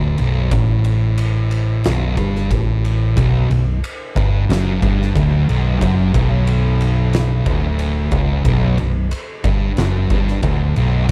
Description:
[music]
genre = stoner and doom metal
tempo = 91 BPM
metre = 4/4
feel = straight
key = B minor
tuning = A4 = 440 Hz
[part]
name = thick fuzz guitar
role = riff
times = 0.0-11.1 s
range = B1 to A2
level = -21 LUFS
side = equal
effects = distortion
[part]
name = hollow-body short-scale fingered electric bass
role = bass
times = 0.0-11.1 s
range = B0 to A1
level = -23 LUFS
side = equal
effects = overdrive
[part]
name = oversized low-tuned drum kit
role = drums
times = 0.2-11.1 s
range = kick drum, ride cymbal, snare drum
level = -24 LUFS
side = equal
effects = none
[part]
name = thick fuzz guitar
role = riff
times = 3.2-11.1 s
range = B1 to G2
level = -22 LUFS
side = equal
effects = distortion
[sound]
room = little or no reverb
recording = none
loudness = -17 LUFS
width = mono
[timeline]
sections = 0.0-11.1 A section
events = none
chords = 0.0 Bm

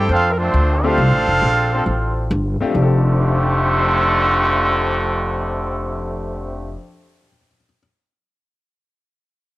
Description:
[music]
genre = jazz, big band swing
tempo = 135 BPM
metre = 4/4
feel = swing 67% on 8ths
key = F major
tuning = A4 = 441 Hz
[part]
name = clear trumpet section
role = melody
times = 0.0-2.3 s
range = A3 to G5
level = -19 LUFS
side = right 2 dB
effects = none
[part]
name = muted trombone section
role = second line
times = 0.0-6.8 s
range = F2 to G4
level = -20 LUFS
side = right 1 dB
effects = cassette tape
[part]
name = warm trombone section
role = sustained chords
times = 0.0-6.8 s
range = F3 to A4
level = -25 LUFS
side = left 2 dB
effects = cassette tape
[part]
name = upright bass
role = bass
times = 0.0-6.7 s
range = F1 to F2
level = -19 LUFS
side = equal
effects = none
[part]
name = clear concert grand piano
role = accompaniment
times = 0.8-7.8 s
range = F2 to C7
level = -26 LUFS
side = left 4 dB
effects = cassette tape
[sound]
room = moderate spring reverb, RT60 1.4 s, studio reverb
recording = home recording on cassette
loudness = -15 LUFS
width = side -17 dB against mid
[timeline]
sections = 0.0-2.8 A section; 2.8-6.3 B section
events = none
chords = 0.0 F6; 2.8 F69

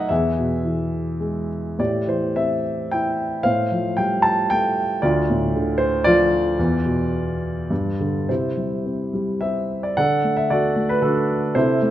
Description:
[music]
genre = classical, lyrical solo piano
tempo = 101-118 BPM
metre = 3/4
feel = rubato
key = C lydian from 8.3 s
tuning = A4 = 440 Hz
[part]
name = warm grand piano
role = solo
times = 0.0-11.9 s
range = D2 to A5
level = -19 LUFS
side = equal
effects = none
[sound]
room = moderate concert hall reverb, RT60 1.8 s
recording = none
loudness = -19 LUFS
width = side -12 dB against mid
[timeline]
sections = 0.0-8.3 A section; 8.3-11.9 B section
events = none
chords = 0.1 E; 1.8 Am7; 3.4 Fadd9/A; 5.0 Dm; 6.6 E5; 7.7 G5; 8.3 C; 10.0 D

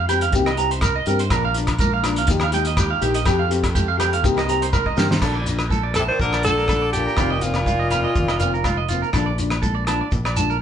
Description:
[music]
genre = highlife guitar band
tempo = 122 BPM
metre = 4/4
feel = swing 53% on 16ths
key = Bb major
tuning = A4 = 440 Hz
[part]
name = electric guitar at the edge of break-up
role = arpeggios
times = 0.0-10.6 s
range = F4 to Bb5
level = -24 LUFS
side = right 8 dB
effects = none
[part]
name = fingered electric bass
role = bass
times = 0.0-10.6 s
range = F1 to G2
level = -24 LUFS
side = equal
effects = none
[part]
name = nylon-string guitar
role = accompaniment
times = 0.1-10.5 s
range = Eb3 to G4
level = -25 LUFS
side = left 5 dB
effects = none
[part]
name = cloth-damped thuddy drum kit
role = drums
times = 0.1-10.5 s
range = crash cymbal, hi-hat, kick drum, rim click, snare drum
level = -24 LUFS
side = equal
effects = none
[part]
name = agogo bells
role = percussion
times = 0.1-10.4 s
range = none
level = -32 LUFS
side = left 5 dB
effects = none
[part]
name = shekere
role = percussion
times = 0.1-10.6 s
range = none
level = -29 LUFS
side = left 2 dB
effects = none
[part]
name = congas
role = percussion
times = 0.3-10.5 s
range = none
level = -31 LUFS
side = equal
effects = none
[part]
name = combo organ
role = sustained chords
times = 1.3-5.2 s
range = A3 to Bb4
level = -33 LUFS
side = right 1 dB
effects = none
[part]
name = bright alto saxophone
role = melody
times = 6.0-8.9 s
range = F4 to C5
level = -22 LUFS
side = equal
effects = none
[part]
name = bright tenor saxophone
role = second line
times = 6.0-8.9 s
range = Bb2 to Eb3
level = -28 LUFS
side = left 4 dB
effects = none
[sound]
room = moderate large studio reverb, RT60 0.8 s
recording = band playing live in one room, nothing above 10.4 kHz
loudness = -18 LUFS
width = side -9 dB against mid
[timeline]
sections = 0.0-5.2 A section; 5.2-10.6 B section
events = drum fill 4.7-5.2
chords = 0.3 Cm7; 1.3 Bb; 2.3 Ebadd9; 3.3 Fadd9; 4.2 Cm7; 5.2 Bbmaj7; 7.2 F7sus4; 9.1 Bbmaj7

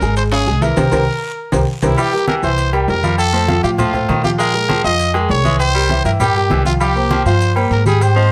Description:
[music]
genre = latin, salsa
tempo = 199 BPM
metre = 4/4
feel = straight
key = unclear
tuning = A4 = 442 Hz
[part]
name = growling trumpet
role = melody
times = 0.0-8.3 s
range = E4 to Eb5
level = -21 LUFS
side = equal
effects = none
[part]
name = warm baby grand piano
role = accompaniment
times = 0.0-8.3 s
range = E3 to Ab5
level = -22 LUFS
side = equal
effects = none
[part]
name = upright bass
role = bass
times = 0.0-8.3 s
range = Ab1 to Bb2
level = -20 LUFS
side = equal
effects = none
[part]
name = congas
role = percussion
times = 0.0-8.3 s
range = none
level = -25 LUFS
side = equal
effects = none
[part]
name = guiro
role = percussion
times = 0.0-1.9, 6.8-8.3 s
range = none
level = -39 LUFS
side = equal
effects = none
[part]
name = maracas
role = percussion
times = 0.0-8.3 s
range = none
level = -38 LUFS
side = equal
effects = none
[part]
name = timbales and agogo bells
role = percussion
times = 0.2-8.2 s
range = none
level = -26 LUFS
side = equal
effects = none
[part]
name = raspy baritone saxophone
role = second line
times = 2.0-8.3 s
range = Eb3 to Ab3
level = -25 LUFS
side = equal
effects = none
[sound]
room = light reverb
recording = none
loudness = -15 LUFS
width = mono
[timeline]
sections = 0.0-2.0 A section; 2.0-8.3 B section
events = band accent 0.8-2.0; drum fill 1.2-2.0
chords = 0.0 Db; 0.8 C5; 2.0 C7; 3.2 F; 4.4 Bb7sus4; 5.6 C7; 6.8 C7sus4

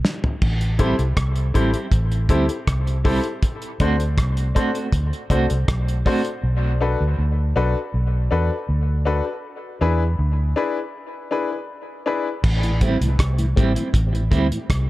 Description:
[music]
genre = dub reggae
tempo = 80 BPM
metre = 4/4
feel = straight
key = A dorian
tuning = A4 = 440 Hz
[part]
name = cloth-damped thuddy drum kit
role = drums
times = 0.0-6.4, 12.4-14.9 s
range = crash cymbal, hi-hat, kick drum, rim click, snare drum, toms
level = -21 LUFS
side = equal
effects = none
[part]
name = vintage muted fingered electric bass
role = bass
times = 0.4-14.9 s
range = A1 to E2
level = -20 LUFS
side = equal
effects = none
[part]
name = clean electric guitar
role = accompaniment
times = 0.8-6.2, 12.8-14.5 s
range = G3 to F#4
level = -26 LUFS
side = right 3 dB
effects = tremolo, dub echo
[part]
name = bright grand piano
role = stabs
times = 0.8-12.3 s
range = D4 to C5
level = -26 LUFS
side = left 4 dB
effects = dub echo
[part]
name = mellow tonewheel organ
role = accompaniment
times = 12.6-14.6 s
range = A2 to G4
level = -29 LUFS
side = left 1 dB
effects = chorus vibrato, slow rotary speaker, dub echo
[sound]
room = light reverb, small room ambience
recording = dark, warm production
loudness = -18 LUFS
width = side -17 dB against mid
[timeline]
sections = 0.4-12.4 A section; 12.4-14.9 B section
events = break 0.0-0.4, 10.9-12.4; drum fill 0.0-0.4; part muted 6.4-12.4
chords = 0.4 Am7; 3.4 D7; 6.4 Bm7; 9.4 E7; 12.4 Am7

